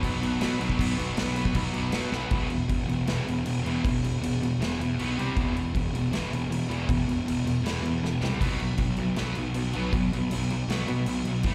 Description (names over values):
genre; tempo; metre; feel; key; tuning
punk rock; 158 BPM; 4/4; straight; unclear; A4 = 440 Hz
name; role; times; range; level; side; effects
overdriven electric guitar; riff; 0.0-11.5 s; E2 to C4; -33 LUFS; equal; none
sludgy distorted guitar; riff; 0.0-11.5 s; E2 to C4; -34 LUFS; equal; overdrive
fuzz picked electric bass; bass; 0.0-11.5 s; E1 to B2; -33 LUFS; equal; overdrive
big rock drum kit; drums; 0.0-11.5 s; crash cymbal, kick drum, snare drum; -33 LUFS; equal; none
room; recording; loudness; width
small room ambience; live gig heard through the venue's PA, recital hall reverb; -27 LUFS; mono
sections
0.0-2.3 A section; 2.3-11.5 B section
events
drum fill 2.1, 8.0-8.4; half time 2.3-11.5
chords
0.0 B5; 2.3 E5; 5.0 B5; 5.2 C5; 5.4 E5; 8.2 C5; 8.4 B5